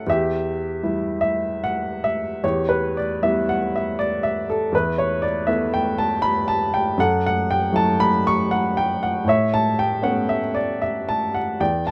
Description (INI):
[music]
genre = classical, lyrical solo piano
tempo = 78 BPM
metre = 3/4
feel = uneven beats, rubato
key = E dorian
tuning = A4 = 438 Hz
[part]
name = warm upright piano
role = solo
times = 0.0-11.9 s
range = E2 to C#6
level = -22 LUFS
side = equal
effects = none
[sound]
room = light reverb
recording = none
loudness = -22 LUFS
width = mono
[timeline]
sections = 0.0-2.4 A section; 2.4-11.9 B section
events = none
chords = 0.1 Em; 4.7 Asus2/E; 7.0 F#m7; 9.3 Aadd9